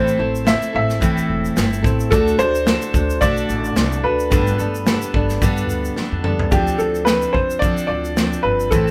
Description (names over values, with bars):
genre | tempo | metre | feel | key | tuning
acoustic pop | 109 BPM | 4/4 | swing 55% on 16ths | unclear | A4 = 440 Hz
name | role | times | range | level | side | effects
warm upright piano | melody | 0.0-8.9 s | G4 to E5 | -23 LUFS | equal | none
barky reed electric piano | accompaniment | 0.0-8.9 s | A3 to D5 | -34 LUFS | equal | none
picked steel-string acoustic guitar | accompaniment | 0.0-8.9 s | G2 to A4 | -25 LUFS | equal | none
upright bass | bass | 0.0-8.9 s | E1 to G2 | -26 LUFS | equal | none
natural country drum kit | drums | 0.1-8.9 s | kick drum, shaker, snare drum, toms | -23 LUFS | equal | none
room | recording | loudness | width
moderate large studio reverb, RT60 0.9 s | band playing live in one room | -18 LUFS | mono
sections
0.0-6.5 A section; 6.5-8.9 B section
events
drum fill 6.0-6.5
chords
0.0 Am; 2.1 D; 4.3 Gadd9; 6.5 Dm7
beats
0.47 1.01 1.56 | 2.12 2.67 3.22 3.77 | 4.32 4.87 5.42 5.97 | 6.52 7.07 7.62 8.17 | 8.72